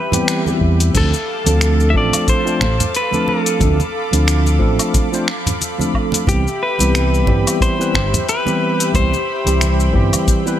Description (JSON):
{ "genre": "sunset chillout", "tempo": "90 BPM", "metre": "4/4", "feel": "swing 57% on 16ths", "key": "D dorian", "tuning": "A4 = 441 Hz", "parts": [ { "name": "clean electric guitar", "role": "melody", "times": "0.0-10.6 s", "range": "G4 to E5", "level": "-21 LUFS", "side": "left 1 dB", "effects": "ping-pong delay" }, { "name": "lush unison pad", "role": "sustained chords", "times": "0.0-10.6 s", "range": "G4 to D6", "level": "-25 LUFS", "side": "equal", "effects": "chorus" }, { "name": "tine electric piano", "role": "accompaniment", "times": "0.1-10.6 s", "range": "E3 to C5", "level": "-20 LUFS", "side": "equal", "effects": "auto-pan" }, { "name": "dusty soul sampler-style drum kit", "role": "drums", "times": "0.1-10.6 s", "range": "crash cymbal, finger snaps, hi-hat, shaker, woodblock", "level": "-22 LUFS", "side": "left 2 dB", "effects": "none" }, { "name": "congas", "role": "percussion", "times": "0.1-10.4 s", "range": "none", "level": "-24 LUFS", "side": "right 3 dB", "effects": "none" }, { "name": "overdriven fingered electric bass", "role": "bass", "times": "0.6-10.1 s", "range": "G1 to E2", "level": "-16 LUFS", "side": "equal", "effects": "none" }, { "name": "electronic kick drum", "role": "drums", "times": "0.6-10.4 s", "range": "none", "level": "-18 LUFS", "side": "equal", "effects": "none" } ], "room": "light reverb", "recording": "none", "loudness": "-14 LUFS", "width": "side -11 dB against mid", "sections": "0.9-10.6 A section", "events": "none", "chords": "0.0 Cmaj7; 0.9 Dm7; 6.3 Cmaj7" }